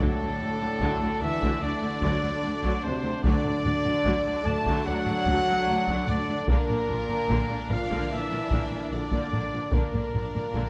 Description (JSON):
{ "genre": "cinematic, epic orchestral film score", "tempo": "74 BPM", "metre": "4/4", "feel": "straight", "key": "unclear", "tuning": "A4 = 439 Hz", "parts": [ { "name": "warm symphonic violin section", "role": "melody", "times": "0.0-10.7 s", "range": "A4 to A5", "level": "-40 LUFS", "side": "equal", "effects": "none" }, { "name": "clear symphonic violin section", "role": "second line", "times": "0.0-10.7 s", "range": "A3 to D4", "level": "-41 LUFS", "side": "equal", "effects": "none" }, { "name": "rich symphonic viola section", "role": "accompaniment", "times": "0.0-10.7 s", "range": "D3 to Bb3", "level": "-37 LUFS", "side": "equal", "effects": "none" }, { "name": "bright trombone section", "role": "sustained chords", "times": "0.0-10.7 s", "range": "A2 to A3", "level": "-37 LUFS", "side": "equal", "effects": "none" }, { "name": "clear symphonic string section", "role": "sustained chords", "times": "0.0-10.7 s", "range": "D4 to D5", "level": "-41 LUFS", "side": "equal", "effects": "none" }, { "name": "mellow French horn section", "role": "sustained chords", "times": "0.0-10.7 s", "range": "A3 to A4", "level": "-37 LUFS", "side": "equal", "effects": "none" }, { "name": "warm trumpet", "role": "stabs", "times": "0.0-10.7 s", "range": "A4 to A5", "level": "-33 LUFS", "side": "equal", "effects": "none" }, { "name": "rich symphonic cello section", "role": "bass", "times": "0.0-10.6 s", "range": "D2 to Bb2", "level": "-37 LUFS", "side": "equal", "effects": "none" }, { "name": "rich symphonic double bass section", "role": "bass", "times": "0.0-10.6 s", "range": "Bb1 to D2", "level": "-37 LUFS", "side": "equal", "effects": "none" }, { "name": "taiko ensemble", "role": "drums", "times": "0.0-10.7 s", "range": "none", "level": "-32 LUFS", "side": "equal", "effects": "none" } ], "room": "moderate scoring stage reverb, RT60 1.9 s", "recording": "none", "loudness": "-27 LUFS", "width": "mono", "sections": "0.0-10.7 A section", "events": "none", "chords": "0.0 D; 6.5 Bb" }